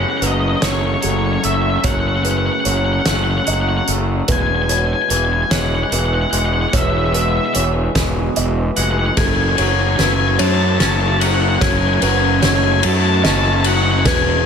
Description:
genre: post-rock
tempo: 49 BPM (dotted quarters)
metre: 6/8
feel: straight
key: F# dorian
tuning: A4 = 439 Hz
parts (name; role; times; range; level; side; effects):
- octave-fuzz lead guitar; melody; 0.0-14.5 s; C#5 to A5; -20 LUFS; left 3 dB; distortion, slapback echo
- glassy FM pad; sustained chords; 0.0-14.5 s; E3 to G#5; -25 LUFS; equal; ensemble chorus, built-in reverb
- felt-muted upright piano; arpeggios; 0.0-14.5 s; A4 to D#5; -26 LUFS; right 5 dB; slapback echo
- twangy electric guitar; arpeggios; 0.0-14.5 s; E2 to C#4; -25 LUFS; left 1 dB; slapback echo
- fuzz fingered electric bass; bass; 0.0-14.4 s; E1 to F#2; -19 LUFS; equal; overdrive
- loose indie drum kit; drums; 0.2-14.2 s; hi-hat, kick drum, ride cymbal, snare drum; -20 LUFS; left 1 dB; none
room: light reverb, small room ambience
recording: none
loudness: -14 LUFS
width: side -7 dB against mid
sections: 0.0-9.2 A section; 9.2-14.5 B section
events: build-up 9.2-14.5; drum fill 9.2-14.5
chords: 0.0 F#madd9; 4.3 E; 9.2 F#madd9

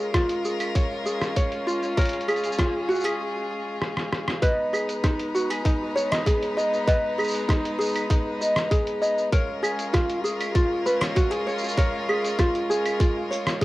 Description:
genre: folktronica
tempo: 98 BPM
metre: 4/4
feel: straight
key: G# dorian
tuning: A4 = 441 Hz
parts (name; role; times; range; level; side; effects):
- clear string quartet; sustained chords; 0.0-13.6 s; G#3 to B4; -30 LUFS; left 1 dB; cassette tape
- ukulele; arpeggios; 0.0-13.6 s; D#4 to D#5; -25 LUFS; equal; cassette tape, tape echo, plate reverb
- electronic kick drum; drums; 0.1-13.6 s; none; -22 LUFS; equal; cassette tape
- lo-fi sampler-style drum kit; drums; 0.1-13.6 s; cabasa, claves, hi-hat, rim click; -30 LUFS; equal; cassette tape
room: light reverb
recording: home recording on cassette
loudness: -22 LUFS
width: side -18 dB against mid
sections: 0.0-4.4 A section; 4.4-13.6 B section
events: break 3.2-4.4; drum fill 3.8-4.4; band accent 4.3-4.6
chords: 0.0 A#m7; 4.4 G#m; 9.3 A#m7

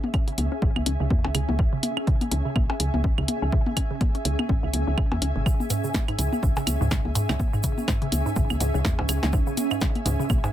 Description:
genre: minimal techno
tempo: 124 BPM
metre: 4/4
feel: swing 58% on 16ths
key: C# minor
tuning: A4 = 440 Hz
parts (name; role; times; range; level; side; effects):
- electronic toms, claves and percussion blips; percussion; 0.0-10.5 s; none; -30 LUFS; left 2 dB; overdrive, dub echo
- ethereal airy pad; texture; 0.0-10.5 s; C#4 to G#5; -32 LUFS; right 1 dB; ensemble chorus, built-in reverb, sidechain pumping
- pulsing gated texture; texture; 0.0-10.5 s; E5; -39 LUFS; right 7 dB; chorus, built-in reverb, sidechain pumping
- hollow square pluck; riff; 0.1-10.5 s; G#2 to C#4; -30 LUFS; equal; chorus, phaser, sidechain pumping, ping-pong delay
- electronic kick drum; drums; 0.1-10.4 s; none; -24 LUFS; equal; none
- punchy analog drum machine; drums; 0.1-10.2 s; hi-hat, snare drum; -29 LUFS; equal; none
- woody FM bass; bass; 0.4-10.4 s; G#1 to E2; -26 LUFS; equal; sidechain pumping
- egg shaker; percussion; 5.5-10.5 s; none; -38 LUFS; right 4 dB; none
room: light reverb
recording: none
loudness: -22 LUFS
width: side -12 dB against mid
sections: 0.0-10.5 A section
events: none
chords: 0.0 C#m

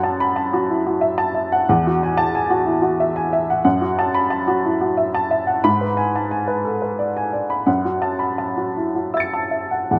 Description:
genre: neoclassical minimalist piano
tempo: 60 BPM (dotted quarters)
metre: 6/8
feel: rubato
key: F# minor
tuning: A4 = 440 Hz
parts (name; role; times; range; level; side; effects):
- warm upright piano; solo; 0.0-10.0 s; E2 to C#7; -20 LUFS; equal; none
room: moderate concert hall reverb, RT60 2.1 s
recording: close, detailed microphones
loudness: -20 LUFS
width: mono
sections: 0.0-10.0 A section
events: none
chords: 0.0 F#m7; 1.7 Eadd9; 3.6 F#m7; 5.6 G#dim; 7.7 F#m7

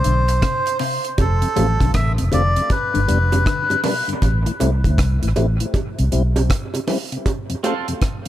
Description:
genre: dub reggae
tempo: 79 BPM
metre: 4/4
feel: swing 64% on 16ths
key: C major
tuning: A4 = 440 Hz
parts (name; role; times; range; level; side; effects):
- melodica; melody; 0.0-3.8 s; A4 to E5; -22 LUFS; equal; dub echo
- mellow tonewheel organ; accompaniment; 0.0-8.3 s; F2 to F4; -26 LUFS; left 2 dB; overdrive, high-pass filter, dub echo
- mellow electric guitar; arpeggios; 0.0-4.0 s; B2 to F3; -28 LUFS; left 7 dB; dub echo
- vintage muted fingered electric bass; bass; 0.0-6.5 s; F1 to D2; -18 LUFS; equal; none
- deep reggae drum kit; drums; 0.0-8.3 s; hi-hat, kick drum, rim click; -22 LUFS; equal; none
- bongos; percussion; 0.3-7.9 s; none; -28 LUFS; right 5 dB; high-pass filter on perc, dub echo
- twangy electric guitar; accompaniment; 7.6-7.9 s; C4 to C5; -26 LUFS; right 6 dB; wide subtle chorus, high-pass filter, dub echo
room: light reverb, small room ambience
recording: none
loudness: -16 LUFS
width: side -13 dB against mid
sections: 0.0-8.3 A section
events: break 0.0-7.3, 7.3-8.3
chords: 0.0 C; 1.2 F; 2.7 G; 4.2 Am; 5.7 C; 7.3 F

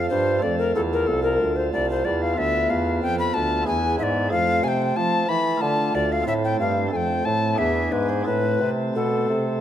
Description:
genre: classical, baroque-style sonata movement with continuo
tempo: 92 BPM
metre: 3/4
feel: rubato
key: A minor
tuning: A4 = 437 Hz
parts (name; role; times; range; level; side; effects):
- alto recorder; melody; 0.0-9.6 s; A4 to B5; -23 LUFS; left 3 dB; none
- chamber organ, sparkling flutes; accompaniment; 0.0-9.6 s; C2 to A4; -26 LUFS; right 2 dB; none
- warm bassoon; bass; 0.0-9.6 s; C2 to F3; -25 LUFS; right 1 dB; none
room: wet recital hall reverb, RT60 1.3 s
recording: faint mains hum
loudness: -20 LUFS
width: side -10 dB against mid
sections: 0.0-9.6 A section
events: none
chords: 0.0 Dm; 2.4 Bm7b5/D; 3.7 E; 4.3 F; 5.6 Dm; 6.3 Am; 6.9 F; 7.6 E7; 8.3 Am

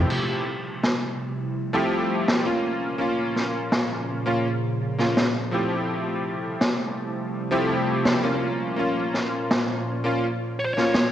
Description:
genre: vaporwave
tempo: 83 BPM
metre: 4/4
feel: straight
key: F major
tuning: A4 = 438 Hz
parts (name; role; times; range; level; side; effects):
- bright electric grand piano; accompaniment; 0.0-11.0 s; F3 to G4; -25 LUFS; equal; analog chorus, analog delay
- warbly tape-like pad; sustained chords; 0.1-11.1 s; Bb2 to E4; -30 LUFS; right 1 dB; chorus, built-in reverb, phaser
- street-band drum kit; drums; 0.1-11.1 s; crash cymbal, snare drum; -24 LUFS; equal; vintage 12-bit sampler grit, gated reverb
- smooth overdriven lead guitar; melody; 10.6-11.1 s; C5 to Db5; -29 LUFS; equal; none
room: moderate lush hall reverb, RT60 1.9 s, small room ambience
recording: cassette tape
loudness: -22 LUFS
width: side -11 dB against mid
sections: 0.1-11.1 A section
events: none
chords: 0.1 Fmaj9; 2.6 Bbm; 5.9 Fmaj9; 8.4 Bbm

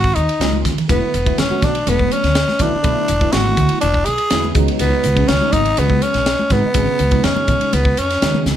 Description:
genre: electric jazz fusion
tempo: 123 BPM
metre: 4/4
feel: straight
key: unclear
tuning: A4 = 441 Hz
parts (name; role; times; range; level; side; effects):
- growling tenor saxophone; melody; 0.0-8.5 s; B3 to Ab4; -18 LUFS; equal; none
- upright bass; bass; 0.0-8.6 s; E1 to F2; -19 LUFS; equal; none
- tight funk drum kit; drums; 0.0-8.6 s; hi-hat, kick drum, ride cymbal, snare drum; -20 LUFS; equal; none
- barky tine electric piano; accompaniment; 0.4-8.5 s; Db3 to F#4; -22 LUFS; right 2 dB; ensemble chorus
- congas; percussion; 0.5-8.6 s; none; -25 LUFS; equal; none
room: light reverb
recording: none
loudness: -14 LUFS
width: side -10 dB against mid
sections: 0.0-8.6 A section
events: drum fill 0.5-0.9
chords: 0.0 Ab9sus4; 0.9 E9sus4; 4.6 Db9sus4

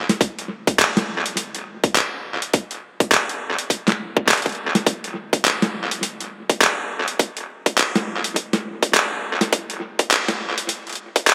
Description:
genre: glitch hop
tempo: 103 BPM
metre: 4/4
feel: swing 60% on 16ths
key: none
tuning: none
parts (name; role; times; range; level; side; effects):
- boom bap sampler-style drum kit; drums; 0.1-11.3 s; handclaps, hi-hat, snare drum; -22 LUFS; equal; analog delay
- electronic kick drum; drums; 0.2-11.3 s; none; -21 LUFS; equal; high-pass filter on kick, high-pass filter on room
room: wet plate reverb, RT60 2.6 s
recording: echo-heavy mix, vinyl crackle, high-pass filter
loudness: -21 LUFS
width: mono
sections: 0.0-11.3 A section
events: build-up 0.0-11.3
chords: none

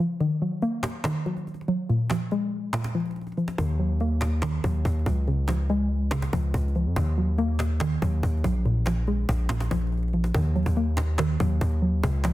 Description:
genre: hip hop, trap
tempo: 142 BPM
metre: 4/4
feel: half-time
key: Eb minor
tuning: A4 = 439 Hz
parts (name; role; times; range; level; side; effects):
- soft round pluck; accompaniment; 0.0-12.3 s; Bb2 to Bb3; -27 LUFS; equal; chorus, low-pass filter
- cajon; drums; 0.2-12.3 s; none; -32 LUFS; equal; none
- hard-hitting 808-style bass; bass; 3.6-12.3 s; Bb1 to F2; -24 LUFS; equal; none
room: studio ambience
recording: dense, heavily limited modern master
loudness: -23 LUFS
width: side -16 dB against mid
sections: 0.0-10.3 A section; 10.3-12.3 B section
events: break 0.0-3.6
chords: 0.2 Ebm; 1.9 Bb5; 3.6 Ebm7; 5.3 Db; 7.0 Ebm; 8.7 Bb5; 10.3 Ebm

